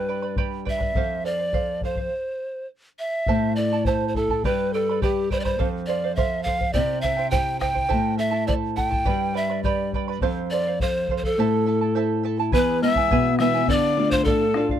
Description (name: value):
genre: andean folk, Andean ensemble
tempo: 104 BPM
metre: 2/4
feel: straight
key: A minor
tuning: A4 = 441 Hz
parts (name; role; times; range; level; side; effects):
- reedy pan flute; melody; 0.0-14.7 s; G4 to G5; -24 LUFS; equal; none
- charango; accompaniment; 0.0-14.8 s; E4 to B5; -29 LUFS; right 14 dB; none
- nylon-string guitar; accompaniment; 0.0-14.8 s; E2 to F4; -26 LUFS; left 2 dB; none
- bombo; percussion; 0.4-14.8 s; none; -27 LUFS; left 1 dB; none
- reedy quena; second line; 12.5-14.7 s; A5 to F6; -27 LUFS; left 17 dB; none
room: little or no reverb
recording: dry, close 1970s-style studio recording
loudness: -20 LUFS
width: side -10 dB against mid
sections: 0.0-3.3 A section; 3.3-12.5 A section; 12.5-14.8 B section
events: stop 2.1-3.3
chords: 0.0 G; 1.0 F; 2.1 N.C.; 3.3 Am; 4.4 G; 5.6 F; 6.8 C; 7.9 Am; 9.1 G; 10.2 F; 11.4 Am; 12.5 E; 13.7 Dm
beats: 0.38 | 0.96 1.54 | 2.12 2.70 | 3.28 3.86 | 4.44 5.01 | 5.59 6.17 | 6.75 7.33 | 7.91 8.48 | 9.06 9.64 | 10.22 10.79 | 11.37 11.95 | 12.52 13.10 | 13.67 14.25